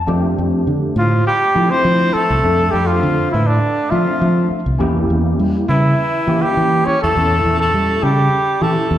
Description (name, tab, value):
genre	jazz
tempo	102 BPM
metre	4/4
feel	swing 55% on 16ths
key	F major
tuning	A4 = 440 Hz
part	barky tine electric piano	accompaniment	0.0-9.0 s	Bb2 to E5	-22 LUFS	left 1 dB	overdrive, ensemble chorus, slapback echo
part	fingered electric bass	bass	0.1-9.0 s	C2 to G3	-16 LUFS	equal	none
part	breathy trumpet	melody	1.0-9.0 s	D4 to C#5	-17 LUFS	equal	slapback echo
part	bright tenor saxophone	second line	1.0-9.0 s	D3 to C#4	-26 LUFS	right 3 dB	slapback echo
room	light reverb, studio reverb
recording	live gig heard through the venue's PA, recital hall reverb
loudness	-13 LUFS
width	side -12 dB against mid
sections	0.1-9.0 A section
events	none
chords	0.1 F69; 4.8 A7b9/E